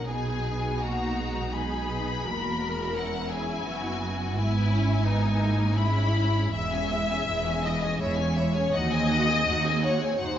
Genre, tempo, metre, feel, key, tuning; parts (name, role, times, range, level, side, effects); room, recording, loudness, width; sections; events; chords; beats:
classical, slow romantic movement for string orchestra; 83 BPM; 3/4; uneven beats, rubato; C# minor from 6.5 s; A4 = 440 Hz
rich studio violin section; melody; 0.0-10.4 s; E5 to B5; -34 LUFS; left 4 dB
warm studio violin section; second line; 0.0-10.4 s; D#4 to E5; -29 LUFS; left 2 dB
warm studio viola section; accompaniment; 0.0-10.4 s; G#3 to G#4; -34 LUFS; equal
clear studio double bass section; bass; 0.0-10.4 s; E1 to D#2; -30 LUFS; right 1 dB
rich studio cello section; bass; 0.0-10.4 s; D#2 to B2; -30 LUFS; right 2 dB
wet recital hall reverb, RT60 1.4 s; recorded in a church or concert hall, nothing above 7.6 kHz; -24 LUFS; side -10 dB against mid
0.0-10.4 A section
0.1 G#m/B; 2.2 E; 4.4 E/G#; 6.5 C#m/E; 8.7 G#7/D#
| 0.06 0.81 1.52 | 2.24 2.96 3.65 | 4.36 5.05 5.75 | 6.54 7.29 8.01 | 8.74 9.48 10.21